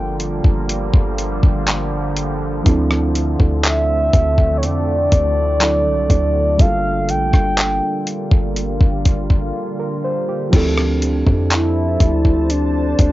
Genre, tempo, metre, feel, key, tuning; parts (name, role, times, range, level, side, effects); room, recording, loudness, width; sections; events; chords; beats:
contemporary R&B; 61 BPM; 4/4; straight; G dorian; A4 = 437 Hz
mellow horn-like synth lead; melody; 0.0-13.1 s; D4 to G5; -19 LUFS; equal; chorus, cassette tape, analog delay
muted felt-like synth keys; accompaniment; 0.0-13.1 s; F3 to C5; -23 LUFS; right 2 dB; chorus, cassette tape
deep dark ambient pad; sustained chords; 0.0-13.1 s; D3 to A5; -25 LUFS; right 1 dB; chorus, built-in reverb, cassette tape
warm 808-style bass; bass; 0.0-13.1 s; G1 to F2; -20 LUFS; equal
dusty soul sampler-style drum kit; drums; 0.2-13.1 s; crash cymbal, handclaps, hi-hat, kick drum, rim click; -14 LUFS; equal
little or no reverb; home recording on cassette, nothing above 7.5 kHz; -14 LUFS; side -16 dB against mid
0.0-10.5 A section; 10.5-13.1 A section
break 9.5-10.5
0.0 Gm7; 2.7 Dm7; 5.6 D7; 6.6 Gm7; 10.5 Dm7
0.69 1.68 | 2.66 3.64 4.63 5.61 | 6.59 7.58 8.56 9.54 | 10.53 11.51 12.50